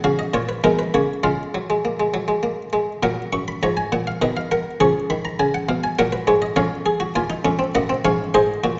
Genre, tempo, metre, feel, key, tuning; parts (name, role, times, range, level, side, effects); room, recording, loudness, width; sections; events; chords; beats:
classical, baroque-style 4-part fugue for harpsichord; 101 BPM; 3/4; straight; F# major; A4 = 441 Hz
buff-stop harpsichord; solo; 0.0-8.8 s; D#2 to C#6; -21 LUFS; equal
wet recital hall reverb, RT60 1.4 s; nothing above 7.9 kHz; -21 LUFS; mono
0.0-3.0 A section; 3.0-8.8 B section
0.0 F#; 0.6 G#m/B; 1.2 C#; 3.0 F#; 4.2 B; 4.8 C#7; 6.0 F#/A#; 6.6 C#/E#; 7.7 F#
0.04 0.64 | 1.24 1.84 2.44 | 3.03 3.63 4.22 | 4.82 5.40 5.98 | 6.57 7.15 7.75 | 8.34